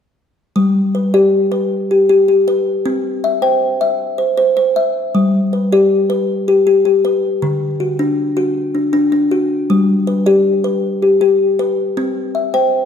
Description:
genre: southern african traditional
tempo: 105 BPM (dotted quarters)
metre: 12/8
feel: straight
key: G major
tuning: A4 = 440 Hz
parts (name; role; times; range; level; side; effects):
- kalimba; arpeggios; 0.6-12.9 s; D3 to G5; -12 LUFS; left 2 dB; none
room: wet recital hall reverb, RT60 1.7 s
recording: none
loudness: -12 LUFS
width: side -8 dB against mid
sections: 0.6-12.9 A section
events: none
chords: 0.6 G; 2.9 C; 5.1 G; 7.4 D; 9.7 G; 12.0 C

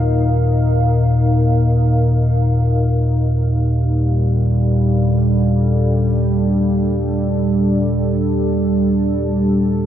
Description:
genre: dark ambient drone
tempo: free time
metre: none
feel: none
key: unclear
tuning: A4 = 441 Hz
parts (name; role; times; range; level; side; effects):
- deep dark ambient pad; sustained chords; 0.0-9.9 s; G3 to F5; -18 LUFS; equal; chorus, built-in reverb
- deep rumbling drone; drone; 0.0-9.9 s; Eb2 to Bb2; -16 LUFS; equal; built-in reverb, ensemble chorus
room: wet huge ambient reverb, RT60 8.4 s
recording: dreamy mix soaked in reverb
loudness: -14 LUFS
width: side -10 dB against mid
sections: 0.0-9.9 A section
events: none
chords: 0.0 Eb5; 3.3 Gm

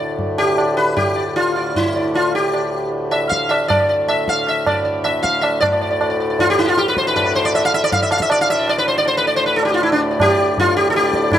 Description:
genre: indian classical, Hindustani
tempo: 156 BPM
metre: 4/4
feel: straight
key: D raga bageshri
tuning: A4 = 440 Hz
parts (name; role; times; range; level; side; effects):
- sitar; melody; 0.0-11.4 s; D4 to F5; -16 LUFS; equal; none
- hand-pumped harmonium; drone; 0.0-11.4 s; D2 to A2; -23 LUFS; left 2 dB; none
- tabla; percussion; 0.2-11.4 s; none; -22 LUFS; right 1 dB; none
room: moderate lush hall reverb, RT60 2.8 s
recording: rough home demo mix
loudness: -15 LUFS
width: side -10 dB against mid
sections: 0.0-5.6 A section; 5.6-11.4 B section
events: speeding up 0.0-11.4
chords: none

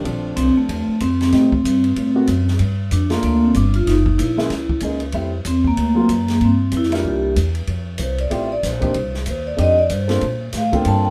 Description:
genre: jazz, small-group swing and bop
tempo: 189 BPM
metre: 4/4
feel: swing 61% on 8ths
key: F major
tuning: A4 = 440 Hz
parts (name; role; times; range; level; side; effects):
- dark baby grand piano; accompaniment; 0.0-11.1 s; F3 to A4; -26 LUFS; equal; none
- upright bass; bass; 0.0-11.1 s; Gb1 to Bb2; -23 LUFS; equal; none
- open jazz drum kit; drums; 0.1-10.9 s; hi-hat, kick drum, ride cymbal, snare drum; -30 LUFS; equal; none
- vibraphone with medium mallets; melody; 0.4-11.1 s; A3 to A5; -20 LUFS; equal; none
room: light reverb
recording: none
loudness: -18 LUFS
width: mono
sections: 0.0-7.7 A section; 7.7-11.1 B section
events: vibraphone solo 7.7-11.1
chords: 0.0 Bbmaj9; 1.3 Am7b5; 2.0 F#dim; 2.6 Gm7; 3.9 Gb9; 5.1 Fmaj9; 5.8 D7alt; 6.4 Gm7; 7.0 C7; 7.7 Fmaj9; 8.9 Cm; 9.6 F13; 10.2 Bbmaj9

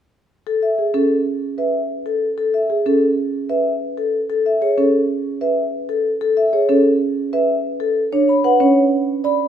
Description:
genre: classical, minimalist pattern music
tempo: 188 BPM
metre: 6/4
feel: straight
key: A major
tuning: A4 = 440 Hz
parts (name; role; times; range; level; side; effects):
- vibraphone with medium hard mallets; melody; 0.5-9.5 s; A4 to B5; -18 LUFS; left 3 dB; none
- marimba with soft mallets; arpeggios; 0.8-9.4 s; C#4 to D5; -19 LUFS; right 4 dB; none
room: moderate recital hall reverb, RT60 1.5 s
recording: none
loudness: -16 LUFS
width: side -9 dB against mid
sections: 0.5-9.5 A section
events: none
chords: 0.5 Amaj9; 8.1 Bm

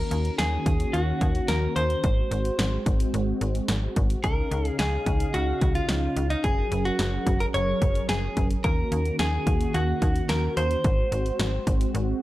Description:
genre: synth-pop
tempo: 109 BPM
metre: 4/4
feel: straight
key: unclear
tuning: A4 = 440 Hz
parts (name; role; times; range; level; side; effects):
- direct-recorded clean electric guitar; melody; 0.0-12.2 s; D#4 to C#5; -28 LUFS; equal; lush chorus, analog delay
- warm analog pad; sustained chords; 0.0-12.2 s; C#3 to E#5; -31 LUFS; right 1 dB; chorus
- slap-like FM bass; bass; 0.0-12.1 s; F#1 to D#2; -27 LUFS; equal; none
- punchy analog drum machine; drums; 0.1-12.1 s; hi-hat, kick drum, snare drum; -26 LUFS; equal; none
room: light reverb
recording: none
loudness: -22 LUFS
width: side -16 dB against mid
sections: 0.0-12.2 A section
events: none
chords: 0.0 D#m7; 2.0 G#7; 4.2 C#add9; 6.4 F#add9; 8.6 D#m7; 10.8 G#7

